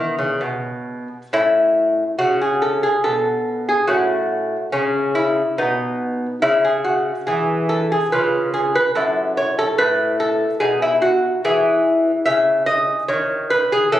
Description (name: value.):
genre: classical, baroque-style dance for lute.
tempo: 71 BPM.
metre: 3/4.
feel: rubato.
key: E major.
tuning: A4 = 439 Hz.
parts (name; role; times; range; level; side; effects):
lute; solo; 0.0-14.0 s; F#2 to E5; -16 LUFS; equal; none.
room: moderate recital hall reverb, RT60 1.7 s.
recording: recorded on a phone in the room, club reverb, compression.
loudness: -16 LUFS.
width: side -12 dB against mid.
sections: 0.0-1.3 A section; 1.3-14.0 B section.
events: none.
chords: 0.4 N.C.; 1.3 A; 3.9 F#m/A; 5.6 N.C.; 6.4 C#m; 8.1 C#7; 9.0 F#m7; 10.6 B; 11.4 E.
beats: 0.42 | 1.34 2.20 3.05 | 3.89 4.73 5.58 | 6.42 7.27 8.12 | 8.95 9.78 10.61 | 11.44 12.27 13.09 | 13.93.